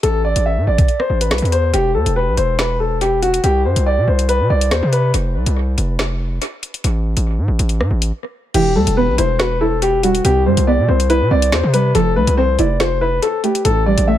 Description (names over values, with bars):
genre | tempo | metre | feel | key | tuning
hip hop, drill | 141 BPM | 4/4 | half-time | E minor | A4 = 439 Hz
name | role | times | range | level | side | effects
warm grand piano | melody | 0.0-5.1, 8.5-14.2 s | F#4 to E5 | -17 LUFS | left 2 dB | low-pass filter, analog delay
distorted 808-style bass | bass | 0.0-14.2 s | E1 to C3 | -17 LUFS | equal | distortion
drill drum kit | drums | 0.0-14.1 s | crash cymbal, hi-hat, kick drum, rim click, snare drum | -22 LUFS | equal | analog delay
string-like resonator pluck | accompaniment | 8.5-14.2 s | A2 to F#4 | -20 LUFS | right 3 dB | chorus, low-pass filter, analog delay
room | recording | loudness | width
little or no reverb | echo-heavy mix | -14 LUFS | side -12 dB against mid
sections
0.0-8.5 A section; 8.5-14.2 B section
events
break 5.1-8.5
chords
0.0 A5; 1.7 E5; 3.4 N.C.; 5.1 F5; 6.8 N.C.; 8.5 Emadd9; 10.2 Cmaj7; 11.9 Fmaj7; 13.7 A7(no3)